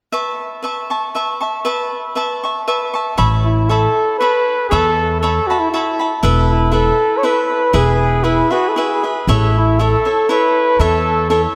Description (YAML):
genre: mexican folk, mariachi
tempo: 118 BPM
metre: 3/4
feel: straight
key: A major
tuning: A4 = 436 Hz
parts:
  - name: cavaquinho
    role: accompaniment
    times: 0.1-11.6 s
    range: E4 to C#6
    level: -21 LUFS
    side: equal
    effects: none
  - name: upright bass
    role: bass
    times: 3.2-11.4 s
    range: E1 to E2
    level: -19 LUFS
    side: equal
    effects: none
  - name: mellow trumpet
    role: melody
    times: 3.5-11.4 s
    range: E4 to C#5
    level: -18 LUFS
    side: equal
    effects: analog delay
room: wet lush hall reverb, RT60 2.8 s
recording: dreamy mix soaked in reverb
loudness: -16 LUFS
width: mono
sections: 0.1-3.2 A section; 3.2-11.6 B section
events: none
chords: 0.1 Aadd9; 6.2 Esus4; 7.7 E; 9.3 A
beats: | 0.12 0.63 1.14 | 1.65 2.16 2.67 | 3.18 3.70 4.21 | 4.72 5.22 5.73 | 6.23 6.73 7.23 | 7.73 8.24 8.75 | 9.26 9.78 10.28 | 10.79 11.29